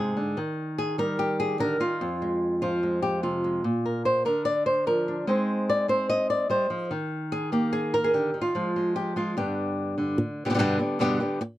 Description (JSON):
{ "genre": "flamenco", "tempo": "147 BPM", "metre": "4/4", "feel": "straight", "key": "unclear", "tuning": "A4 = 440 Hz", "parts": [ { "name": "flamenco guitar", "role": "solo", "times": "0.0-11.4 s", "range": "F2 to Eb5", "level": "-24 LUFS", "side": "equal", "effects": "none" } ], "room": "little or no reverb", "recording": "dry, close 1970s-style studio recording", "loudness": "-24 LUFS", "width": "side -14 dB against mid", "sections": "0.0-10.2 A section; 10.2-11.6 B section", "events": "none", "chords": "0.4 Eb; 2.0 Fm; 3.6 Bb; 5.3 Ab; 6.9 Eb5; 8.5 Fm; 9.4 G", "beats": "| 0.37 0.78 1.19 1.60 | 2.00 2.41 2.82 3.23 | 3.64 4.05 4.46 4.86 | 5.27 5.68 6.09 6.50 | 6.91 7.32 7.73 8.13 | 8.54 8.95 9.36 9.77 | 10.18 10.59 11.00 11.41" }